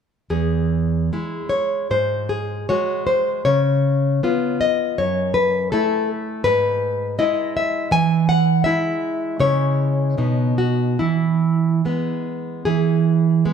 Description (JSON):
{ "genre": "romantic piece for solo classical guitar", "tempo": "70-84 BPM", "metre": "2/4", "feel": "rubato", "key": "E major", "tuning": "A4 = 438 Hz", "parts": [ { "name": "nylon-string guitar", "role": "solo", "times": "0.3-13.5 s", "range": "E2 to G#5", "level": "-17 LUFS", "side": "equal", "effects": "none" } ], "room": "wet recital hall reverb, RT60 1.8 s", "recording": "none", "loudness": "-17 LUFS", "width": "side -7 dB against mid", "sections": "0.3-12.7 A section", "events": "none", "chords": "0.3 E; 1.9 G#7; 3.5 C#7; 5.0 F#m7; 6.5 E/G#; 7.9 E; 9.4 C#m; 10.2 B; 11.0 E" }